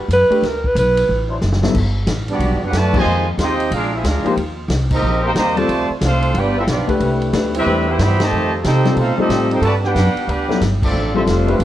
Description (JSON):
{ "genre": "jazz, big band swing", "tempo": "183 BPM", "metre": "4/4", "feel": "swing 64% on 8ths", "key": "G major", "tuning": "A4 = 438 Hz", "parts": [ { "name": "dark trombone section", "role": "sustained chords", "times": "0.0-1.4, 3.4-11.6 s", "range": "F#3 to C5", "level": "-28 LUFS", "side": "left 1 dB", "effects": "none" }, { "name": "breathy alto saxophone", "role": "melody", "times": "0.1-1.3 s", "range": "Bb4 to B4", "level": "-15 LUFS", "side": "right 1 dB", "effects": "none" }, { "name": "upright bass", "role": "bass", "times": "0.1-11.6 s", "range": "F1 to C3", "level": "-19 LUFS", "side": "equal", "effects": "none" }, { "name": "vintage drum kit", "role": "drums", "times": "0.1-11.6 s", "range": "crash cymbal, hi-hat, kick drum, ride cymbal, snare drum", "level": "-24 LUFS", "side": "equal", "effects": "none" }, { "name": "warm concert grand piano", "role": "accompaniment", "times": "0.3-11.6 s", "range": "G2 to B4", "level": "-20 LUFS", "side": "left 4 dB", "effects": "none" }, { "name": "clear trumpet section", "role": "melody", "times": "2.3-11.6 s", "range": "B3 to B5", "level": "-21 LUFS", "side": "equal", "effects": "none" }, { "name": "clear trombone section", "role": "second line", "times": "2.3-11.6 s", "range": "C3 to G4", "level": "-22 LUFS", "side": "right 4 dB", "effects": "none" } ], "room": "light reverb", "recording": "worn, warbling old tape, cassette tape, warbly pitch drift", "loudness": "-14 LUFS", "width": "side -13 dB against mid", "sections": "0.0-1.7 A section; 1.7-11.6 B section", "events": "alto saxophone solo 0.0-1.7; drum fill 1.4-1.7; band accent 2.9, 4.9, 8.2, 10.8", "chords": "0.0 Gmaj7 (rootless); 1.1 D9; 1.7 Gmaj7; 3.1 Fm7; 3.7 Bb7; 4.4 Eb6; 5.7 Dm7; 6.3 G7; 7.0 Cmaj7; 8.3 F9; 9.6 Gmaj7; 10.9 Dm7", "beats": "0.10 | 0.43 0.76 1.09 1.42 | 1.75 2.08 2.40 2.73 | 3.06 3.39 3.72 4.05 | 4.38 4.70 5.03 5.36 | 5.69 6.02 6.35 6.67 | 7.00 7.33 7.66 7.99 | 8.32 8.64 8.97 9.30 | 9.63 9.96 10.29 10.61 | 10.94 11.27 11.60" }